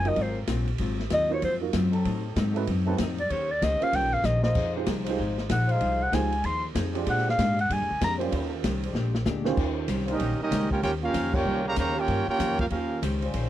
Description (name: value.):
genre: jazz, big band swing.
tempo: 191 BPM.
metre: 4/4.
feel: swing 62% on 8ths.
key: Eb mixolydian.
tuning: A4 = 440 Hz.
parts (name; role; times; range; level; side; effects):
breathy clarinet; melody; 0.0-8.1 s; C5 to C6; -26 LUFS; equal; none.
archtop guitar, miked and amplified; accompaniment; 0.0-13.5 s; Ab2 to C5; -35 LUFS; left 8 dB; none.
warm baby grand piano; accompaniment; 0.0-9.9 s; Eb3 to Eb5; -31 LUFS; right 11 dB; none.
muted trombone section; sustained chords; 0.0-13.5 s; Eb2 to Db5; -35 LUFS; left 3 dB; none.
upright bass; bass; 0.0-13.5 s; Gb1 to Bb2; -28 LUFS; equal; none.
open jazz drum kit; drums; 0.1-13.4 s; crash cymbal, hi-hat, kick drum, ride cymbal, snare drum; -33 LUFS; equal; none.
clear trumpet section; melody; 10.1-13.0 s; Db4 to Bb5; -28 LUFS; right 2 dB; none.
bright trombone section; second line; 10.1-13.0 s; Db3 to G4; -30 LUFS; right 4 dB; none.
room: little or no reverb.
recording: dry, close 1970s-style studio recording.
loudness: -24 LUFS.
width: side -12 dB against mid.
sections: 0.0-9.6 A section; 9.6-13.5 B section.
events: clarinet solo 0.0-9.6; drum fill 4.2-4.6, 8.9-9.6; band accent 11.3.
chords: 0.0 Ab13; 2.0 Adim7; 3.3 Eb13; 4.6 Fm7; 7.1 Bb13; 8.3 Eb13; 8.9 Bb13; 9.6 Eb13.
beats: 0.17 0.48 | 0.79 1.11 1.42 1.74 | 2.05 2.36 2.68 2.99 | 3.30 3.62 3.93 4.24 | 4.56 4.87 5.18 5.50 | 5.81 6.12 6.44 6.75 | 7.07 7.38 7.69 8.00 | 8.32 8.63 8.94 9.26 | 9.57 9.88 10.20 10.51 | 10.82 11.14 11.45 11.77 | 12.08 12.39 12.71 13.02 | 13.34.